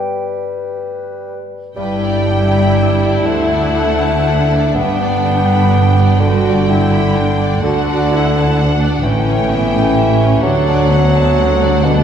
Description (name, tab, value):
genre	classical, slow romantic movement for symphony orchestra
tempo	38-43 BPM (dotted quarters)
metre	6/8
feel	rubato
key	G major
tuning	A4 = 440 Hz
part	warm clarinet	second line	0.0-1.4 s	B4	-24 LUFS	left 5 dB	none
part	clear bassoon	accompaniment	0.0-12.0 s	B2 to B3	-17 LUFS	right 1 dB	none
part	concert harp	arpeggios	0.0-12.0 s	G2 to G4	-20 LUFS	left 4 dB	none
part	rich studio violin section	melody	1.8-12.0 s	F#5 to G5	-24 LUFS	left 3 dB	none
part	rich studio violin section	second line	1.8-12.0 s	C#4 to B5	-22 LUFS	left 3 dB	none
part	rich studio viola section	accompaniment	1.8-12.0 s	B3 to F#4	-22 LUFS	right 1 dB	none
part	rich studio cello section	bass	1.8-12.0 s	D2 to A2	-19 LUFS	right 2 dB	none
part	rich symphonic double bass section	bass	1.8-12.0 s	G1 to D2	-18 LUFS	right 2 dB	none
room	wet scoring stage reverb, RT60 1.8 s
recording	heard from further back in the room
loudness	-11 LUFS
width	side -8 dB against mid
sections	0.0-1.8 A section; 1.8-12.0 B section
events	none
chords	0.0 G; 3.3 D7; 4.8 G; 7.6 D; 9.0 A7; 10.4 D